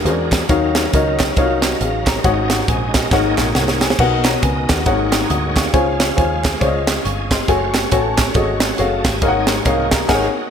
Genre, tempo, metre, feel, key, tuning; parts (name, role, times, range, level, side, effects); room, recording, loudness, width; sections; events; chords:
uptempo gospel; 138 BPM; 4/4; swing 60% on 8ths; A4 = 441 Hz
bright tonewheel organ; sustained chords; 0.0-10.5 s; Gb3 to C6; -24 LUFS; right 1 dB; overdrive, chorus vibrato, fast rotary speaker
overdriven picked electric bass; bass; 0.0-10.3 s; Gb1 to Fb2; -23 LUFS; equal
dark baby grand piano; accompaniment; 0.1-10.3 s; Ab2 to Eb6; -18 LUFS; left 2 dB; analog chorus
crisp fusion drum kit; drums; 0.1-10.3 s; crash cymbal, hi-hat, kick drum, snare drum; -18 LUFS; right 1 dB; gated reverb
group handclap; percussion; 0.3-10.0 s; -29 LUFS; right 4 dB
moderate lush hall reverb, RT60 1.8 s, small room ambience; bright 1980s-style digital production; -14 LUFS; side -8 dB against mid
0.0-10.5 A section
drum fill 3.1-4.0; band accent 10.1-10.5
0.5 Ebm9; 2.2 Ab7sus4; 4.0 Cbmaj7; 4.9 Ab9sus4; 5.7 Dbmaj7; 7.5 Gbmadd9; 9.2 Ab9sus4